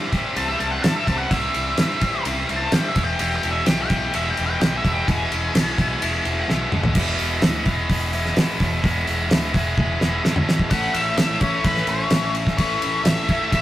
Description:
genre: classic rock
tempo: 128 BPM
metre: 4/4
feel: straight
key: unclear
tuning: A4 = 445 Hz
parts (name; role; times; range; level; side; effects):
- distorted electric guitar; riff; 0.0-13.6 s; E2 to E4; -23 LUFS; equal; overdrive
- growling fingered electric bass; bass; 0.0-13.6 s; E1 to G2; -28 LUFS; equal; overdrive
- damped 70s drum kit; drums; 0.1-13.6 s; crash cymbal, hi-hat, kick drum, ride cymbal, snare drum, toms; -22 LUFS; equal; none
- octave-fuzz lead guitar; melody; 0.4-6.5, 10.7-13.6 s; B4 to A5; -25 LUFS; left 1 dB; distortion
room: moderate stone room reverb, RT60 1.0 s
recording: rough rehearsal-room recording, warm saturation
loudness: -18 LUFS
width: side -14 dB against mid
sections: 0.0-7.0 A section; 7.0-10.7 B section; 10.7-13.6 C section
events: lead electric guitar solo 0.0-7.0; drum fill 6.5-7.0, 9.8-10.7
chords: 0.0 C; 3.0 E; 10.7 A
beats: 0.36 0.83 | 1.30 1.78 2.25 2.72 | 3.19 3.67 4.14 4.61 | 5.08 5.55 6.02 6.49 | 6.96 7.43 7.89 8.36 | 8.83 9.30 9.77 10.24 | 10.71 11.18 11.65 12.12 | 12.59 13.06 13.53

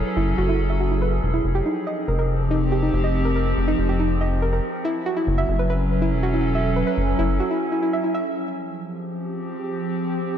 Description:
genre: IDM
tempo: 141 BPM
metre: 4/4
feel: straight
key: unclear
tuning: A4 = 440 Hz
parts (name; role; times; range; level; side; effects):
- warbly tape-like pad; sustained chords; 0.0-10.4 s; F3 to A4; -25 LUFS; equal; chorus, built-in reverb, phaser
- rubbery square bass; bass; 0.0-7.4 s; E1 to F#1; -22 LUFS; equal; none
- soft round pluck; arpeggios; 0.2-8.2 s; Eb4 to E5; -24 LUFS; right 1 dB; chorus, digital delay
room: moderate lush hall reverb, RT60 2.8 s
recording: dark, warm production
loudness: -20 LUFS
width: side -9 dB against mid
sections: 0.0-8.3 A section; 8.3-10.4 B section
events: none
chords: 0.0 F#m11; 1.4 Fm11; 4.8 F#m11; 8.3 Fmadd9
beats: 0.17 0.59 1.02 | 1.44 1.87 2.29 2.72 | 3.15 3.57 4.00 4.42 | 4.85 5.27 5.70 6.12 | 6.55 6.97 7.40 7.83 | 8.25 8.68 9.10 9.53 | 9.95

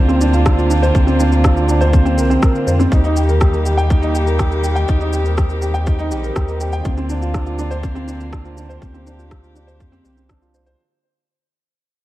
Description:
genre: piano and strings electronica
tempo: 122 BPM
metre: 4/4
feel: straight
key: unclear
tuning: A4 = 440 Hz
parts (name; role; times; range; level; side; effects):
- dark string quartet; sustained chords; 0.0-10.8 s; D3 to G4; -23 LUFS; left 1 dB; none
- dark upright piano; riff; 0.0-10.8 s; C4 to G5; -19 LUFS; right 1 dB; digital delay
- round analog bass; bass; 0.0-10.7 s; Bb1 to F2; -18 LUFS; equal; sidechain pumping
- electronic shaker and rim click; drums; 0.1-10.8 s; none; -26 LUFS; equal; none
- electronic kick drum; drums; 0.5-10.4 s; none; -15 LUFS; equal; overdrive
room: light reverb, digital ambience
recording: none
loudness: -13 LUFS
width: side -16 dB against mid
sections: 0.0-10.8 A section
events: drop 0.0-10.8; fade-out 2.9-10.8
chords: 0.0 Bbadd9/D; 2.9 Eb; 6.8 Bbadd9/D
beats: 0.46 | 0.95 1.44 1.93 2.42 | 2.92 3.41 3.90 4.39 | 4.88 5.38 5.87 6.36 | 6.85 7.34 7.83 8.33 | 8.82 9.31 9.80 10.29

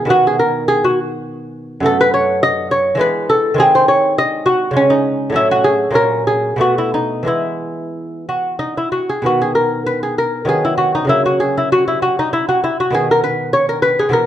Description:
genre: classical, baroque-style dance for lute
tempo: 88-104 BPM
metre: 3/4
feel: rubato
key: E major, B major from 9.3 s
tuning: A4 = 439 Hz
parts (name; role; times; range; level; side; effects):
- lute; solo; 0.0-14.3 s; F#2 to D#5; -13 LUFS; equal; none
room: moderate recital hall reverb, RT60 1.4 s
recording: dark, warm production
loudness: -13 LUFS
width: side -11 dB against mid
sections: 0.0-9.3 A section; 9.3-14.3 A section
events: none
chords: 0.1 B; 1.9 B5/F#; 3.0 E; 3.6 G#/D#; 4.8 C#5; 5.4 F#m/A; 6.0 F#/A#; 6.6 B7; 7.3 E; 9.3 B; 10.5 B/D#; 11.1 F#/C#; 12.9 B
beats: | 0.11 0.70 1.28 | 1.85 2.44 3.02 | 3.61 4.19 4.77 | 5.36 5.97 6.61 | 7.28 7.95 8.61 | 9.26 9.88 10.48 | 11.10 11.72 12.33 | 12.93 13.54 14.14

